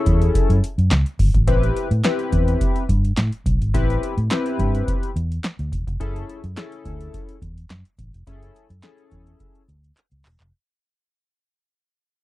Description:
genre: early-eighties boogie funk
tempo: 106 BPM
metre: 4/4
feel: straight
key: unclear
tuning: A4 = 439 Hz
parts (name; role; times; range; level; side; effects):
- chorused polysynth; accompaniment; 0.0-9.6 s; C4 to B4; -25 LUFS; left 4 dB; none
- vintage muted fingered electric bass; bass; 0.1-10.5 s; E1 to A2; -20 LUFS; equal; none
- electro analog drum machine; drums; 0.1-10.5 s; handclaps, hi-hat, kick drum, snare drum; -22 LUFS; equal; none
room: little or no reverb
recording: dry, close 1970s-style studio recording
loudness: -18 LUFS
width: side -17 dB against mid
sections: 0.0-10.5 A section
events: fade-out 0.0-10.5; drum fill 10.0-10.5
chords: 0.0 F#m9; 1.5 Am9; 6.0 F#m9

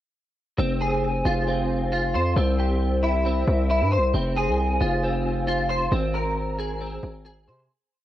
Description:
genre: hip hop, trap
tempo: 135 BPM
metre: 4/4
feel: half-time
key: F minor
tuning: A4 = 440 Hz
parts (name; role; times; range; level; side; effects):
- clean electric guitar; arpeggios; 0.6-7.7 s; C4 to C5; -24 LUFS; equal; ensemble chorus, cassette tape, analog delay
- distorted 808-style bass; bass; 0.6-7.7 s; F1 to C3; -24 LUFS; equal; distortion
room: light reverb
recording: home recording on cassette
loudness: -21 LUFS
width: side -13 dB against mid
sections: 0.6-7.7 hook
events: fade-out 5.9-7.7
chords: 0.6 Fm; 2.4 C; 4.1 Fm; 5.9 Abadd9

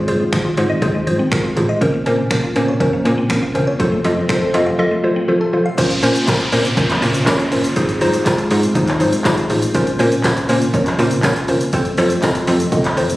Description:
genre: dance-pop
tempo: 121 BPM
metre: 4/4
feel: straight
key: Bb minor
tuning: A4 = 441 Hz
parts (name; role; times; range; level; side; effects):
- string machine, cellos; sustained chords; 0.0-13.2 s; C3 to F4; -24 LUFS; equal; ensemble chorus, sidechain pumping
- mallet-like synth pluck; arpeggios; 0.0-5.8 s; Db3 to F5; -23 LUFS; equal; chorus, phaser, sidechain pumping, digital delay
- slap-like FM bass; bass; 0.0-13.1 s; E1 to Bb2; -21 LUFS; equal; sidechain pumping
- hollow square pluck; accompaniment; 0.1-13.1 s; C4 to Eb5; -18 LUFS; equal; chorus, sidechain pumping
- deep house drum kit; drums; 0.1-13.2 s; crash cymbal, finger snaps, handclaps, hi-hat, kick drum, shaker, snare drum; -21 LUFS; equal; none
- swell and downlifter; sound effects; 3.6-9.7 s; none; -26 LUFS; equal; none
- tambourine; percussion; 5.8-13.1 s; none; -36 LUFS; left 1 dB; none
room: light reverb, digital ambience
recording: recorded on a phone in the room, studio reverb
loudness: -14 LUFS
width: side -17 dB against mid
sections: 0.0-5.8 A section; 5.8-13.2 B section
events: none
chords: 0.0 Ab6; 1.8 Bbmadd9; 3.8 F; 5.8 Bbmadd9; 7.8 Ab6; 9.7 Bbmadd9; 11.7 F

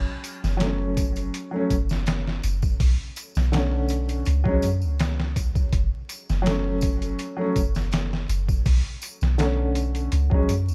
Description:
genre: trip hop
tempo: 82 BPM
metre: 4/4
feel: straight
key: F# minor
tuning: A4 = 440 Hz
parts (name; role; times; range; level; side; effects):
- soft 808-style bass; bass; 0.0-10.7 s; F#1 to F#2; -26 LUFS; equal; tube saturation
- trip hop sampler-style drum kit; drums; 0.2-10.7 s; hi-hat, kick drum, snare drum; -28 LUFS; equal; overdrive
- tambourine; percussion; 0.2-10.7 s; none; -44 LUFS; equal; none
- dark upright piano; accompaniment; 0.6-10.5 s; D3 to C#4; -30 LUFS; equal; tremolo, tape echo
room: little or no reverb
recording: vinyl crackle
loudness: -24 LUFS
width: mono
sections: 0.0-10.7 A section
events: none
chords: 0.0 F#m; 2.8 Bm7; 4.3 C#sus4; 5.7 F#m; 8.7 Bm7; 10.1 C#sus4

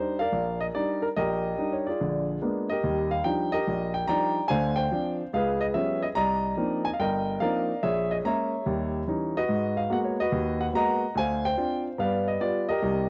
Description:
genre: solo jazz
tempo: 144 BPM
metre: 4/4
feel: swing 68% on 8ths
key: Eb major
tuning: A4 = 440 Hz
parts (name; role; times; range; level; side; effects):
- warm concert grand piano; solo; 0.0-13.1 s; G1 to Bb5; -27 LUFS; equal; cassette tape
room: light reverb, small room ambience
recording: home recording on cassette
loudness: -27 LUFS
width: mono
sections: 0.0-2.8 A section; 2.8-13.1 B section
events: none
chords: 0.0 Ebmaj7; 2.0 Bb7b9; 2.8 Ebmaj9; 4.5 Dm7b5; 5.3 Db7#11; 6.2 Cm11; 7.8 Bbm7b5; 8.7 Eb7b9; 9.5 Abm9; 11.2 Dm7b5; 12.0 G7

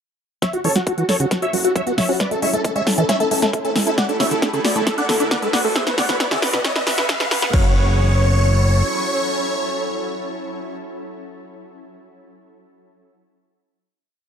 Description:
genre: uplifting trance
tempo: 135 BPM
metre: 4/4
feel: straight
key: F# minor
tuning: A4 = 439 Hz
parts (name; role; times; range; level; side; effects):
- big supersaw lead; melody; 0.4-10.8 s; E4 to F#5; -22 LUFS; equal; phaser, sidechain pumping, low-pass filter, tape echo
- dark concert grand piano; second line; 0.4-10.8 s; F#4 to F#5; -28 LUFS; equal; sidechain pumping, low-pass filter
- shimmering ambient pad; sustained chords; 1.3-10.8 s; D3 to A4; -28 LUFS; equal; chorus, built-in reverb, sidechain pumping
- liquid acid bass; arpeggios; 0.4-7.7 s; A2 to F#4; -24 LUFS; right 1 dB; phaser, sidechain pumping, dub echo
- big-room dance drum kit; drums; 0.4-7.6 s; crash cymbal, hi-hat, snare drum; -22 LUFS; equal; overdrive
- electronic kick drum; drums; 0.4-7.6 s; none; -20 LUFS; equal; overdrive, high-pass filter on kick
- riser; sound effects; 2.7-7.5 s; none; -29 LUFS; equal; none
- fat analog bass; bass; 0.6-8.8 s; E1 to E2; -20 LUFS; equal; sidechain pumping, high-pass filter
room: light reverb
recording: dark, warm production, high-pass filter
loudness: -16 LUFS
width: side -7 dB against mid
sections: 0.4-7.5 build; 7.5-11.1 final chord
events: build-up 0.4-7.5; drum fill 0.4-7.5; filter sweep on acid bass 0.4-7.5; filter sweep on grand piano 0.4-7.5; filter sweep 0.4-7.5; riser 2.7-7.5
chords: 0.4 F#m7; 2.2 A; 4.0 Dadd9; 5.8 Eadd9; 7.5 F#m7

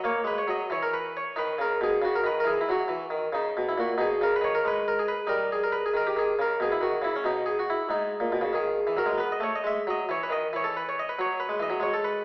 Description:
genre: classical, baroque-style suite movement for harpsichord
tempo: 92 BPM (dotted quarters)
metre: 12/8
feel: rubato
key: E major from 9.2 s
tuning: A4 = 441 Hz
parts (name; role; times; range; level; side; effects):
- harpsichord; solo; 0.0-12.2 s; G#2 to E5; -24 LUFS; equal; none
room: wet recital hall reverb, RT60 1.3 s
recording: heard from further back in the room, telephone sound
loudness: -24 LUFS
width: side -23 dB against mid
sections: 0.0-12.2 A section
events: none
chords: 0.0 F# (rootless); 1.4 B; 4.0 G#m/B; 5.3 D#/G; 6.6 G#m/B; 9.2 B; 10.5 E5

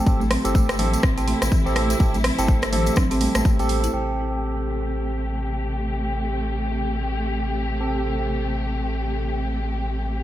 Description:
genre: afro house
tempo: 124 BPM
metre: 4/4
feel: swing 59% on 16ths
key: A minor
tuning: A4 = 441 Hz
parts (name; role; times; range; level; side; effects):
- dark symphonic string section; sustained chords; 0.0-10.2 s; C3 to G4; -29 LUFS; left 1 dB; sidechain pumping, low-pass filter
- barky tine electric piano; stabs; 0.0-10.2 s; C4 to A4; -28 LUFS; right 2 dB; overdrive, phaser, sidechain pumping, ping-pong delay
- warm sub bass; bass; 0.1-10.2 s; G1 to A1; -26 LUFS; equal; sidechain pumping
- electronic kick drum; drums; 0.1-3.6 s; none; -19 LUFS; equal; none
- tambourine; percussion; 0.1-3.9 s; none; -35 LUFS; left 3 dB; none
- buzzing marimba with medium mallets; arpeggios; 0.2-3.9 s; E3 to E4; -28 LUFS; equal; sidechain pumping, ping-pong delay
- congas; percussion; 0.2-3.9 s; none; -31 LUFS; right 4 dB; none
- house drum kit; drums; 0.3-3.9 s; hi-hat, rim click; -27 LUFS; equal; none
room: small room ambience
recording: none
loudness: -20 LUFS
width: side -13 dB against mid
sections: 0.0-3.9 A section; 3.9-10.2 B section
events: band accent 3.7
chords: 0.0 Am7

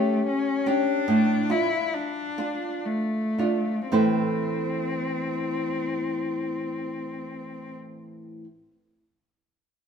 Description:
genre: romantic duo for cello and classical guitar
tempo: 54-77 BPM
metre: 3/4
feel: rubato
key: A minor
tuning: A4 = 440 Hz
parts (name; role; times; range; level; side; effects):
- rich cello; melody; 0.0-7.7 s; A3 to E4; -28 LUFS; left 2 dB; none
- nylon-string guitar; accompaniment; 0.0-8.4 s; A2 to C5; -26 LUFS; right 1 dB; none
room: wet stone room reverb, RT60 1.4 s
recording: band playing live in one room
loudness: -23 LUFS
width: side -7 dB against mid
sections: 0.0-3.9 A section; 3.9-7.0 B section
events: slowing down 0.0-3.9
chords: 0.0 A7; 1.1 Dm/A; 3.9 Am

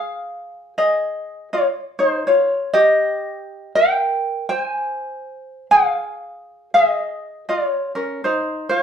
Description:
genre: hawaiian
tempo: 80 BPM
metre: 4/4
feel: swing 62% on 8ths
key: Ab major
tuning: A4 = 441 Hz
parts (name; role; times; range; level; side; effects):
- tenor ukulele; solo; 0.0-8.8 s; Db4 to Ab5; -17 LUFS; equal; none
room: wet studio reverb, RT60 0.7 s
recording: band playing live in one room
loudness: -17 LUFS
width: side -8 dB against mid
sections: 0.0-8.8 A section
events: none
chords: 0.0 Ab5; 1.5 Ebadd9; 4.5 Ab; 7.5 Dbadd9

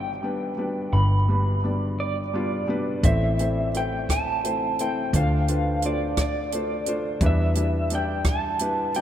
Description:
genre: acoustic folk-pop ballad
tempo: 57 BPM (dotted quarters)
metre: 6/8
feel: straight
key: A minor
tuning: A4 = 440 Hz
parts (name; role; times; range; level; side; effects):
- electric guitar through a small old amp; melody; 0.0-9.0 s; D5 to B5; -27 LUFS; right 1 dB; tremolo
- felt-muted upright piano; accompaniment; 0.0-9.0 s; G1 to D5; -28 LUFS; left 1 dB; none
- vintage muted fingered electric bass; bass; 0.0-9.0 s; G1 to E2; -24 LUFS; equal; none
- compact cocktail drum kit; drums; 3.0-9.0 s; hi-hat, kick drum, rim click; -25 LUFS; equal; none
room: moderate cathedral reverb, RT60 4.9 s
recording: in a vast, echoing space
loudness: -22 LUFS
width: side -10 dB against mid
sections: 0.0-3.0 A section; 3.0-9.0 B section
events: none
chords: 0.0 G; 3.0 Am; 5.1 Dm7; 7.2 Em7

